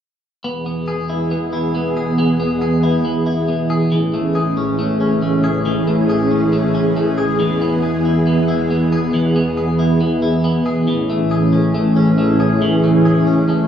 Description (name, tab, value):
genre	dream pop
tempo	69 BPM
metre	4/4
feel	straight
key	E major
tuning	A4 = 437 Hz
part	string machine, cellos	sustained chords	0.4-13.7 s	E2 to G#4	-15 LUFS	equal	ensemble chorus
part	clean electric guitar	arpeggios	0.4-13.7 s	E3 to G#4	-20 LUFS	left 2 dB	lush chorus, tape echo
room	wet studio ambience, RT60 0.5 s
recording	rough home demo mix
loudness	-14 LUFS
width	side -9 dB against mid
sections	0.4-13.7 A section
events	none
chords	0.4 E; 3.9 Amaj7; 7.4 E; 10.9 Amaj7